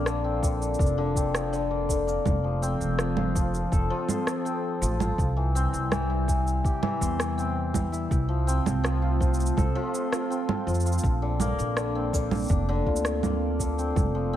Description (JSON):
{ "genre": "folktronica", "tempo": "82 BPM", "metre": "4/4", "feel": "straight", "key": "F major", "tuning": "A4 = 438 Hz", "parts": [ { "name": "warbly tape-like pad", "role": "sustained chords", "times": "0.0-14.4 s", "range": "C3 to A4", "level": "-33 LUFS", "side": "right 1 dB", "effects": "chorus, built-in reverb" }, { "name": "hammered dulcimer", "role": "arpeggios", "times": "0.0-14.4 s", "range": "D3 to C5", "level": "-29 LUFS", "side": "left 3 dB", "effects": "low-pass filter, digital delay" }, { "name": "upright bass", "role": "bass", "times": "0.0-14.4 s", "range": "F1 to F2", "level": "-27 LUFS", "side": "equal", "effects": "none" }, { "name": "electronic rim click, shaker and congas", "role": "drums", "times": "0.1-14.1 s", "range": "none", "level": "-30 LUFS", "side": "right 3 dB", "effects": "none" }, { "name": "electronic kick drum", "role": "drums", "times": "0.4-14.1 s", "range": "none", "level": "-26 LUFS", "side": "equal", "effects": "none" } ], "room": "light reverb, small room reverb", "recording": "none", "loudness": "-24 LUFS", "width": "side -11 dB against mid", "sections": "0.0-14.4 A section", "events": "none", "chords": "0.0 Bbadd9; 2.3 F; 5.2 C; 11.0 Bbadd9", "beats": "0.06 0.79 1.52 | 2.25 2.99 3.72 4.45 | 5.18 5.91 6.64 7.38 | 8.11 8.84 9.57 10.30 | 11.04 11.77 12.50 13.23 | 13.96" }